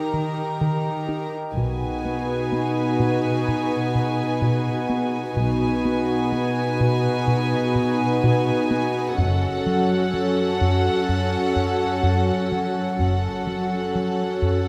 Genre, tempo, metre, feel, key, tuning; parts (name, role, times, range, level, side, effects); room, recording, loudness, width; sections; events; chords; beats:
cinematic, suspense film score; 63 BPM; 4/4; straight; A4 = 440 Hz
warm symphonic violin section; second line; 0.0-14.7 s; A4 to Bb5; -30 LUFS; equal
dark symphonic viola section; accompaniment; 0.0-14.7 s; Db4 to G4; -28 LUFS; equal
glass harmonica; sustained chords; 0.0-14.7 s; G#4 to G5; -32 LUFS; equal
warm symphonic cello section; bass; 0.0-14.7 s; Gb2 to Eb3; -30 LUFS; equal
rubbery square bass; riff; 0.1-14.7 s; Gb2 to Eb4; -27 LUFS; equal
dark symphonic double bass section; bass; 1.6-13.9 s; Gb1 to B1; -35 LUFS; equal
wet scoring stage reverb, RT60 1.8 s; -22 LUFS; mono
0.0-14.7 A section
0.0 Eb; 1.6 B6; 9.2 Gbm
0.61 | 1.56 2.51 3.46 4.42 | 5.37 6.32 7.27 8.23 | 9.18 10.13 11.08 12.04 | 12.99 13.94